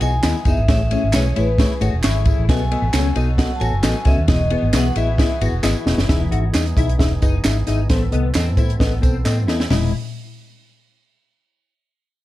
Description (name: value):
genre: uptempo 1960s-style soul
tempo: 133 BPM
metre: 4/4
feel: straight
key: E major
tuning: A4 = 440 Hz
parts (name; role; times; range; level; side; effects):
- vibraphone with medium hard mallets; melody; 0.0-5.4 s; B4 to A5; -25 LUFS; equal; none
- mellow reed electric piano; accompaniment; 0.0-9.9 s; E2 to C#6; -25 LUFS; left 3 dB; fast tremolo
- percussive tonewheel organ; sustained chords; 0.0-9.9 s; E3 to A4; -33 LUFS; right 2 dB; overdrive, wide subtle chorus
- electric guitar through a small old amp; riff; 0.0-9.9 s; A3 to F#4; -28 LUFS; left 8 dB; ensemble chorus
- vintage muted fingered electric bass; bass; 0.0-9.9 s; E1 to A2; -20 LUFS; equal; none
- compact cocktail drum kit; drums; 0.0-9.8 s; hi-hat, kick drum, ride cymbal, snare drum, toms; -19 LUFS; equal; none
- tambourine and handclaps; percussion; 0.0-9.9 s; none; -32 LUFS; right 3 dB; none
room: studio ambience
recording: dark, warm production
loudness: -16 LUFS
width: side -15 dB against mid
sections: 0.0-6.1 A section; 6.1-9.7 B section; 9.7-11.5 C section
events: drum fill 5.6-6.1, 9.3-9.7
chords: 0.0 Emaj7; 0.7 Amaj7; 2.5 B7; 4.3 Emaj7; 7.9 Amadd9; 9.7 Emaj7